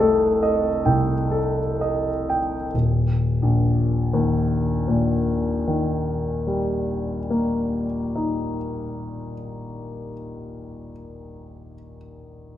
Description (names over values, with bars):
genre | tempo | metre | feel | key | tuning
classical, impressionist solo piano | 23 BPM (dotted quarters) | 9/8 | rubato | Eb major | A4 = 440 Hz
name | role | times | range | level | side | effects
warm grand piano | solo | 0.0-12.6 s | Eb1 to Eb7 | -21 LUFS | left 1 dB | none
room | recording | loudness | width
moderate recital hall reverb, RT60 1.7 s | minimal, uncompressed stereo recording | -20 LUFS | side -11 dB against mid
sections
0.0-2.7 A section; 2.7-10.5 B section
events
slowing down 0.0-2.7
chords
0.0 F9; 2.7 Eb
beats
0.02 | 2.72 5.30 7.91